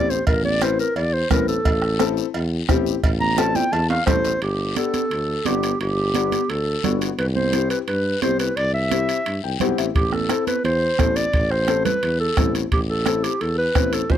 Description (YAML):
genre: latin, cumbia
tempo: 174 BPM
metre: 4/4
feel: straight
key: unclear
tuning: A4 = 441 Hz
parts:
  - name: mellow clarinet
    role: melody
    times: 0.0-14.2 s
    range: G4 to Bb5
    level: -22 LUFS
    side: right 1 dB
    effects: none
  - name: dark upright piano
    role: accompaniment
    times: 0.0-14.0 s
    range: B3 to G5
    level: -25 LUFS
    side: left 14 dB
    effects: none
  - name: warm tuba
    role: bass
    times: 0.0-14.2 s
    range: G1 to G2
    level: -25 LUFS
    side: equal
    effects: none
  - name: guiro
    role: percussion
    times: 0.1-14.2 s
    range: none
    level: -34 LUFS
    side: left 16 dB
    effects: none
  - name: bombo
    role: percussion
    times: 0.3-4.2, 10.0-14.2 s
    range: none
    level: -22 LUFS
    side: right 1 dB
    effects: none
  - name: congas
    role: percussion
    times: 0.3-14.2 s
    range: none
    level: -27 LUFS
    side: right 13 dB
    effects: none
  - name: cowbell and timbales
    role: percussion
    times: 0.3-14.2 s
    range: none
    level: -30 LUFS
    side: right 6 dB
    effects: none
room: little or no reverb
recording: dry, close 1970s-style studio recording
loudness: -18 LUFS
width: side -10 dB against mid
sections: 0.0-4.4 A section; 4.4-14.2 B section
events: clarinet solo 0.0-4.4; drum fill 3.4-4.4; upright piano fill 9.3-10.0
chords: 0.0 Am; 4.4 G; 7.2 C; 10.0 Am